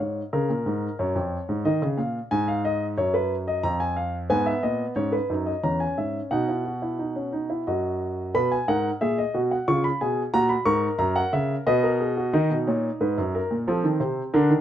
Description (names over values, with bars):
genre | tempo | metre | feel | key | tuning
classical, baroque-style 3-part fugue for grand piano | 90 BPM | 3/4 | straight | G# minor, B major from 4.3 s | A4 = 441 Hz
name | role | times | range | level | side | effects
warm grand piano | solo | 0.0-14.6 s | E2 to C#6 | -22 LUFS | equal | none
room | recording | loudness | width
light reverb | none | -22 LUFS | side -10 dB against mid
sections
0.0-8.3 A section; 8.3-12.3 B section; 12.3-14.6 C section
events
none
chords
0.3 F# (rootless); 1.6 D#5; 2.3 G#m; 3.6 Fmadd11; 4.3 G#m; 5.6 C#m/E; 6.3 B; 7.7 D#m/F#; 8.3 B; 9.7 C#7; 10.3 F#; 11.7 B; 12.3 Ebm; 13.7 F7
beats
| 0.33 0.99 1.65 | 2.31 2.97 3.63 | 4.29 4.96 5.63 | 6.31 6.99 7.67 | 8.35 9.01 9.67 | 10.33 11.00 11.66 | 12.33 13.00 13.67 | 14.34